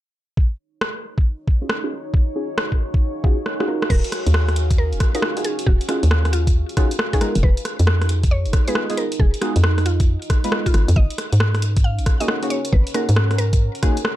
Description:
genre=UK garage, two-step garage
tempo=136 BPM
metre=4/4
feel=swing 65% on 16ths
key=Eb minor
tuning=A4 = 439 Hz
part: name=electronic kick drum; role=drums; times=0.4-13.9 s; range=none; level=-17 LUFS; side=equal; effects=none
part: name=deep dark ambient pad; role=texture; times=1.6-14.2 s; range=Db4 to Gb5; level=-31 LUFS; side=right 1 dB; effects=chorus, built-in reverb, sidechain pumping
part: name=punchy analog drum machine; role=drums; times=0.8-14.2 s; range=crash cymbal, hi-hat, rim click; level=-25 LUFS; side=equal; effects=overdrive
part: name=deep mellow chord stab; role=stabs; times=1.6-14.0 s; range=Ab3 to Cb5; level=-25 LUFS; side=equal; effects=chorus, cassette tape
part: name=mallet-like synth pluck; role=melody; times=3.9-13.6 s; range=F4 to F5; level=-28 LUFS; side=equal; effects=chorus, ping-pong delay
part: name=hollow knocking FM bass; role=bass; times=3.9-13.7 s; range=Eb1 to Ab2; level=-17 LUFS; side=equal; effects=none
room=little or no reverb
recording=dark, warm production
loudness=-17 LUFS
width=side -14 dB against mid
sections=0.4-3.9 A section; 3.9-14.2 B section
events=fade-in on ambient pad 0.4-3.9; kick drops out 3.5-3.9; drum fill 3.5-3.9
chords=0.4 Ebm11; 7.2 Fm7b5; 11.0 Ab9sus4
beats=| 0.37 0.81 1.25 1.70 | 2.14 2.58 3.02 3.46 | 3.90 4.34 4.78 5.22 | 5.67 6.11 6.55 6.99 | 7.43 7.87 8.31 8.76 | 9.20 9.64 10.08 10.52 | 10.96 11.40 11.84 12.28 | 12.72 13.17 13.61 14.05

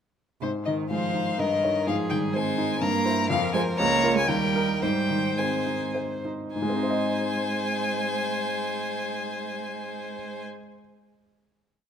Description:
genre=quick classical-period movement for piano quartet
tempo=98-126 BPM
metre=3/4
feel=straight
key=Ab major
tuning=A4 = 440 Hz
part: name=clear violin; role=melody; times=0.4-10.4 s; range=C5 to Bb5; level=-28 LUFS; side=left 4 dB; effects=none
part: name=rich cello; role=second line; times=0.4-10.5 s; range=C3 to Bb3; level=-31 LUFS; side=right 8 dB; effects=none
part: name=clear baby grand piano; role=accompaniment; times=0.4-10.8 s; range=Db2 to Eb5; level=-28 LUFS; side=left 1 dB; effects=none
part: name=clear violin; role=second line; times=0.9-10.5 s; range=Ab4 to Db5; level=-32 LUFS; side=equal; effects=none
room=moderate recital hall reverb, RT60 1.7 s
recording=close, detailed microphones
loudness=-24 LUFS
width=side -8 dB against mid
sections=0.4-6.6 theme; 6.6-10.1 final chord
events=slowing down 2.6-6.6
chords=0.4 Ab; 1.4 Eb7/G; 1.9 Ab; 2.8 C7/G; 3.3 Fm; 3.8 Bbm/Db; 4.3 Eb; 4.8 Ab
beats=| 0.42 0.91 1.39 | 1.87 2.34 2.82 | 3.30 3.79 4.29 | 4.83 5.38 5.95 | 6.55 7.16 7.75 | 8.35 8.94 9.53

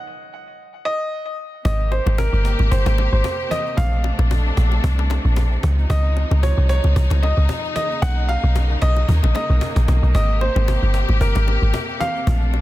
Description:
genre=amapiano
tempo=113 BPM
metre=4/4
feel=swing 55% on 16ths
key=Ab major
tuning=A4 = 439 Hz
part: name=warm grand piano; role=melody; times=0.0-12.6 s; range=Bb4 to F#5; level=-25 LUFS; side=right 1 dB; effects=ping-pong delay
part: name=rich studio string section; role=sustained chords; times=1.7-12.6 s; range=C3 to G4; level=-27 LUFS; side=left 1 dB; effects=none
part: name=deep log drum bass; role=bass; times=1.7-12.6 s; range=G1 to D#2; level=-16 LUFS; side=equal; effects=none
part: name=cajon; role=drums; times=1.7-12.6 s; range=none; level=-32 LUFS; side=equal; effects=none
part: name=congas and bongos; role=percussion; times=1.7-12.6 s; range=none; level=-32 LUFS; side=left 7 dB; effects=none
room=studio reverb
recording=dense, heavily limited modern master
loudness=-16 LUFS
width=side -16 dB against mid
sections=0.0-1.7 A section; 1.7-12.6 B section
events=stop 0.0-1.7; drop 1.7-12.6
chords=0.0 N.C.; 1.7 Abmaj9; 3.8 Bbmaj9; 5.6 Dbmaj9; 7.8 Bmaj9; 10.1 Abmaj9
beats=0.06 0.59 1.12 | 1.65 2.18 2.71 3.25 | 3.78 4.31 4.84 5.37 | 5.90 6.43 6.96 7.49 | 8.02 8.55 9.09 9.62 | 10.15 10.68 11.21 11.74 | 12.27

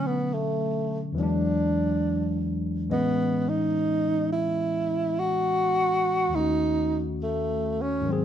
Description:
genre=jazz ballad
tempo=70 BPM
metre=4/4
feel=swing 66% on 8ths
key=unclear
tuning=A4 = 440 Hz
part: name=breathy tenor saxophone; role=melody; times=0.0-8.2 s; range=A3 to F#4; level=-25 LUFS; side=right 1 dB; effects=none
part: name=barky tine electric piano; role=accompaniment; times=0.0-8.2 s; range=D#2 to D#5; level=-27 LUFS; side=left 1 dB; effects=none
room=moderate studio reverb, RT60 0.9 s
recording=none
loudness=-23 LUFS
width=side -9 dB against mid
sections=0.0-8.2 A section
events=none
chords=0.0 Bm9; 1.2 E9; 2.9 Amaj9#11; 6.3 D#m7b5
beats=0.33 1.18 2.04 | 2.90 3.75 4.61 5.47 | 6.33 7.18 8.05

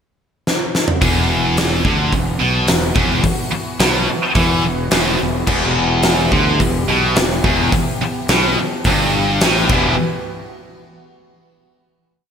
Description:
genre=hard rock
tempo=107 BPM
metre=4/4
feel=straight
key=E minor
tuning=A4 = 445 Hz
part: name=huge arena drum kit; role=drums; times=0.5-9.8 s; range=crash cymbal, hi-hat, kick drum, snare drum, toms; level=-18 LUFS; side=equal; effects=gated reverb
part: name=phased analog pad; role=sustained chords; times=1.0-10.0 s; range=E3 to G4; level=-27 LUFS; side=right 1 dB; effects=phaser, chorus
part: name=high-gain distorted guitar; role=riff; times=1.0-9.9 s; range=E2 to E3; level=-20 LUFS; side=right 9 dB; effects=distortion
part: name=scooped high-gain guitar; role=riff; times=1.0-9.9 s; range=E2 to E3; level=-21 LUFS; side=left 8 dB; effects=distortion
part: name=fuzz fingered electric bass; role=bass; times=1.0-10.0 s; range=E1 to E2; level=-22 LUFS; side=equal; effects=overdrive
part: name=distorted electric guitar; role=riff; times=5.5-9.9 s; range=E2 to G4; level=-21 LUFS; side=left 1 dB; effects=overdrive
room=moderate lush hall reverb, RT60 2.2 s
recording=bright 1980s-style digital production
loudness=-14 LUFS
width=side -7 dB against mid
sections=0.0-1.0 pickup bar; 1.0-10.0 riff; 10.0-12.2 final hit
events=drum fill 0.5-1.0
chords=0.0 N.C.; 1.0 Em; 10.0 N.C.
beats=0.47 | 1.02 1.58 2.13 2.69 | 3.25 3.80 4.36 4.92 | 5.48 6.04 6.60 7.17 | 7.73 8.29 8.86 9.42

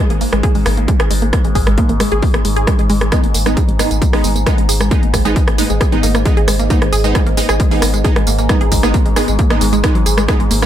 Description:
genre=driving peak-time techno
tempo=134 BPM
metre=4/4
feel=straight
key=G# minor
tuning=A4 = 440 Hz
part: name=wide unison pluck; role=riff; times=0.0-10.7 s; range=F#3 to G#4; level=-19 LUFS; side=right 1 dB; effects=sidechain pumping, dub echo
part: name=overtone-sweeping drone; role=drone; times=0.1-10.7 s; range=G#2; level=-24 LUFS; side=equal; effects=chorus, built-in reverb, sidechain pumping
part: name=saturated sub bass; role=bass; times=0.1-10.7 s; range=G#1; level=-18 LUFS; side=equal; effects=overdrive, sidechain pumping, low-pass filter
part: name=techno drum kit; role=drums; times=0.1-10.7 s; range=hi-hat, rim click, tambourine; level=-20 LUFS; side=right 1 dB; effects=overdrive
part: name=electronic kick drum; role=drums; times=0.4-10.4 s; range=none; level=-15 LUFS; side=equal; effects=overdrive
part: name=rave stab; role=stabs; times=3.1-10.7 s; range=G#3 to D#4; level=-21 LUFS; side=right 2 dB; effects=chorus, built-in reverb, sidechain pumping, ping-pong delay
room=digital ambience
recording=none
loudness=-11 LUFS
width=side -11 dB against mid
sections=0.0-10.7 A section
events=none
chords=0.0 G#m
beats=0.43 0.88 | 1.33 1.78 2.23 2.67 | 3.12 3.57 4.02 4.46 | 4.91 5.36 5.81 6.25 | 6.70 7.15 7.60 8.05 | 8.49 8.94 9.39 9.84 | 10.29

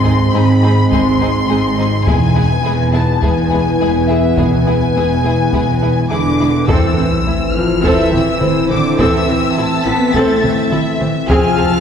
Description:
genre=cinematic, hybrid orchestral and electronic film score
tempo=104 BPM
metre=4/4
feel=straight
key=A harmonic minor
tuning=A4 = 441 Hz
part: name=warm symphonic violin section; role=melody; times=0.0-11.8 s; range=E5 to B6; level=-21 LUFS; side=left 3 dB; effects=none
part: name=warm symphonic violin section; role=second line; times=0.0-11.8 s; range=D#4 to A5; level=-23 LUFS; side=left 2 dB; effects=none
part: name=rich symphonic viola section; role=accompaniment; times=0.0-11.7 s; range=E3 to A4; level=-20 LUFS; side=right 1 dB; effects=none
part: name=dark French horn section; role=sustained chords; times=0.0-11.8 s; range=D3 to B#3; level=-20 LUFS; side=left 1 dB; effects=none
part: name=warbly tape-like pad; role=sustained chords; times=0.0-11.8 s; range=C3 to C5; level=-20 LUFS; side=left 2 dB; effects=chorus, built-in reverb
part: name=rich symphonic cello section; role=bass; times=0.0-11.8 s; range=E2 to B3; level=-20 LUFS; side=right 2 dB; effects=none
part: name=warm symphonic double bass section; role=bass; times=0.0-11.7 s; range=E1 to A1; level=-19 LUFS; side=right 1 dB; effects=none
part: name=taiko ensemble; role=drums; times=0.9-11.8 s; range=none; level=-20 LUFS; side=equal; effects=none
part: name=warm trombone section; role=sustained chords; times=6.7-11.8 s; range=C3 to C4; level=-23 LUFS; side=right 3 dB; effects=none
part: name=sub drop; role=sound effects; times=6.7-9.0 s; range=none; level=-23 LUFS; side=left 1 dB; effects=none
room=wet concert hall reverb, RT60 2.1 s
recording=heard from further back in the room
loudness=-11 LUFS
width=side -7 dB against mid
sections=0.0-6.7 A section; 6.7-11.8 A section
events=impact 6.7-9.0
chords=0.0 G#; 2.1 E; 6.7 Am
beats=0.34 0.92 1.49 | 2.07 2.65 3.23 3.80 | 4.38 4.96 5.53 6.11 | 6.69 7.26 7.84 8.42 | 8.99 9.57 10.15 10.72 | 11.30

